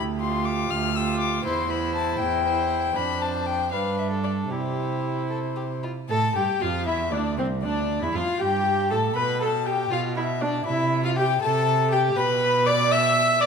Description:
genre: quick classical-period movement for string quartet.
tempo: 79 BPM (dotted quarters).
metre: 6/8.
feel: rubato.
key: C major.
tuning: A4 = 440 Hz.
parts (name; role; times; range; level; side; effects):
warm violin; melody; 0.0-13.5 s; C5 to F6; -27 LUFS; left 9 dB; none.
rich cello; bass; 0.0-13.5 s; C2 to C3; -28 LUFS; right 5 dB; none.
rich violin; second line; 0.2-13.5 s; C4 to E5; -28 LUFS; left 2 dB; none.
rich viola; accompaniment; 0.2-13.5 s; C4 to E5; -28 LUFS; right 2 dB; none.
room: moderate recital hall reverb, RT60 1.6 s.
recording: none.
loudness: -22 LUFS.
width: side -6 dB against mid.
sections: 0.0-6.1 A section; 6.1-13.5 A section.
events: none.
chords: 0.0 G5/D; 1.4 C/E; 3.0 Dm7/F; 3.7 G; 4.5 C; 7.6 G5/D; 9.2 G13/B; 10.7 C6; 12.2 Bmadd11.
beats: 0.70 | 1.45 2.20 | 2.96 3.73 | 4.51 5.30 | 6.09 6.87 | 7.63 8.40 | 9.16 9.91 | 10.66 11.42 | 12.17 12.92.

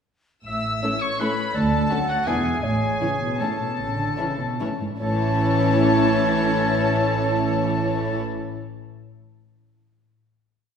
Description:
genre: classical, orchestral ballroom waltz.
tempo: 140-180 BPM.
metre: 3/4.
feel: rubato.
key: A major.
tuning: A4 = 441 Hz.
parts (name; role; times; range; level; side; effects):
warm studio violin section; melody; 0.5-8.2 s; F#5 to E6; -30 LUFS; left 6 dB; none.
clear oboe; second line; 0.5-8.2 s; F#4 to E5; -31 LUFS; equal; none.
dark clarinet; second line; 0.5-8.2 s; C#5 to F#5; -30 LUFS; left 1 dB; none.
mellow hollow concert flute; second line; 0.5-8.2 s; F#5 to E6; -30 LUFS; equal; none.
warm studio cello section; bass; 0.5-8.2 s; D2 to D3; -27 LUFS; right 3 dB; none.
warm studio double bass section; bass; 0.5-8.2 s; E1 to D2; -28 LUFS; right 4 dB; none.
dark studio violin section; second line; 0.8-8.2 s; E4 to D5; -30 LUFS; left 3 dB; none.
dark chamber viola section; accompaniment; 0.8-8.2 s; E3 to C#4; -27 LUFS; equal; none.
mellow French horn section; sustained chords; 0.8-8.2 s; E3 to D4; -31 LUFS; left 4 dB; none.
room: wet scoring stage reverb, RT60 1.6 s.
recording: heard from further back in the room.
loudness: -20 LUFS.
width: side -7 dB against mid.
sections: 0.5-5.0 A section; 5.0-7.4 final chord.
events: slowing down 2.1-5.0.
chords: 0.5 A; 1.6 Dmaj7; 2.3 E7; 2.6 A.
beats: | 0.47 0.84 1.21 | 1.56 1.91 2.28 | 2.64 3.02 3.41 | 3.79 4.18 4.61 | 5.00 5.40 5.81 | 6.20 6.60 7.02.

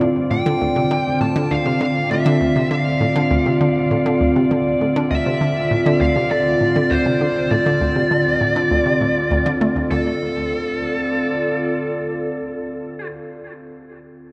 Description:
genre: ambient, sequencer-driven space music.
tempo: 100 BPM.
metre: 4/4.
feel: straight.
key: D minor.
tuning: A4 = 439 Hz.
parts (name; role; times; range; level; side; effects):
evolving wavetable pad; sustained chords; 0.0-13.1 s; D3 to D5; -22 LUFS; equal; chorus, built-in reverb.
analog pluck; riff; 0.0-10.2 s; D2 to A3; -24 LUFS; equal; chorus, tape echo.
dark smooth lead guitar; melody; 0.3-13.1 s; A4 to A5; -25 LUFS; equal; overdrive, tape echo.
room: wet cathedral reverb, RT60 6.0 s.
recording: in a vast, echoing space.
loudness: -18 LUFS.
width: mono.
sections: 0.0-9.9 A section; 9.9-12.3 B section.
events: none.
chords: 0.0 Dm7.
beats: | 0.31 0.91 1.51 2.11 | 2.71 3.31 3.91 4.51 | 5.11 5.71 6.31 6.91 | 7.51 8.11 8.71 9.31 | 9.91 10.51 11.11 11.71.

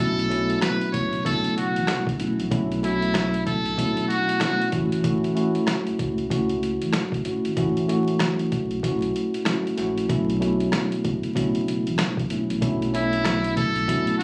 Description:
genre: hip hop, boom-bap hip-hop.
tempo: 95 BPM.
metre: 4/4.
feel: swing 61% on 16ths.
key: B minor.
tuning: A4 = 440 Hz.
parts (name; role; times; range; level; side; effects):
trumpet with metal mute; melody; 0.0-4.7, 12.9-14.2 s; E4 to C#5; -28 LUFS; equal; high-pass filter, low-pass filter, tape echo.
mellow tine electric piano; accompaniment; 0.0-14.2 s; A2 to F#4; -26 LUFS; equal; cassette tape, high-pass filter, low-pass filter.
saturated sub bass; bass; 0.0-14.2 s; E1 to C#2; -33 LUFS; equal; none.
boom bap sampler-style drum kit; drums; 0.2-14.2 s; hi-hat, kick drum, rim click, snare drum; -30 LUFS; equal; none.
room: light reverb.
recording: recorded on a phone in the room, club reverb, vinyl crackle, compression.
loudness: -24 LUFS.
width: mono.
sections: 0.0-14.2 A section.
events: none.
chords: 0.0 Bm11; 4.7 F#m7/A; 10.1 Bm11.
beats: 0.62 1.25 1.88 | 2.52 3.15 3.78 4.41 | 5.04 5.67 6.30 6.94 | 7.57 8.20 8.83 9.46 | 10.09 10.72 11.36 11.99 | 12.62 13.25 13.88.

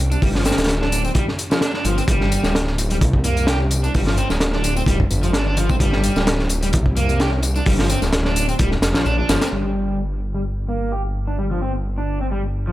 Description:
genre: breakbeat, breaks.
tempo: 129 BPM.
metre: 4/4.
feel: swing 54% on 16ths.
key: G minor.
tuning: A4 = 440 Hz.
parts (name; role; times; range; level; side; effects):
detuned saw bass; bass; 0.0-12.7 s; D1 to C2; -21 LUFS; equal; tube saturation.
crunchy breakbeat drum kit; drums; 0.0-9.5 s; hi-hat, kick drum, snare drum; -20 LUFS; equal; none.
overdriven semi-hollow guitar; riff; 0.1-12.7 s; F3 to G4; -24 LUFS; equal; low-pass filter, dub echo.
tambourine; drums; 0.1-9.5 s; none; -31 LUFS; left 5 dB; overdrive, low-pass filter on perc.
room: studio reverb.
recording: none.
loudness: -17 LUFS.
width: side -15 dB against mid.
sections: 0.0-9.5 A section; 9.5-12.7 B section.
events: filter sweep on overdriven electric guitar 9.5-12.7.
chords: 0.0 G5; 9.5 N.C..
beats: | 0.22 0.69 1.15 1.62 | 2.08 2.55 3.01 3.48 | 3.94 4.41 4.87 5.34 | 5.80 6.27 6.73 7.20 | 7.66 8.13 8.60 9.06 | 9.53 9.99 10.46 10.92 | 11.38 11.85 12.31.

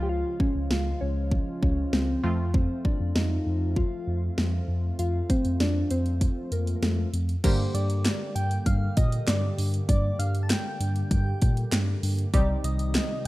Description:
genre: synth-pop.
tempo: 98 BPM.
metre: 4/4.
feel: straight.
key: unclear.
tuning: A4 = 439 Hz.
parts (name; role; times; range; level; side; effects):
soft struck synth lead; melody; 0.0-13.3 s; A3 to A5; -32 LUFS; left 1 dB; chorus.
funky polysynth comp; accompaniment; 0.0-13.3 s; Db3 to G4; -35 LUFS; right 1 dB; chorus.
mellow tine electric piano; bass; 0.0-13.0 s; C2 to Bb2; -26 LUFS; equal; slow stereo tremolo.
house drum kit; drums; 0.4-13.1 s; crash cymbal, handclaps, hi-hat, kick drum, snare drum; -26 LUFS; equal; none.
phased analog pad; sustained chords; 12.3-13.3 s; C3 to G4; -37 LUFS; right 2 dB; phaser, chorus.
room: little or no reverb.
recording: rough home demo mix.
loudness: -23 LUFS.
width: side -18 dB against mid.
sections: 0.0-7.4 A section; 7.4-13.3 B section.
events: none.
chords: 0.0 Db; 2.2 F; 7.4 Gm; 12.3 Cm.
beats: | 0.09 0.70 1.32 1.93 | 2.54 3.15 3.77 4.38 | 4.99 5.60 6.21 6.83 | 7.44 8.05 8.66 9.28 | 9.89 10.50 11.11 11.72 | 12.34 12.95.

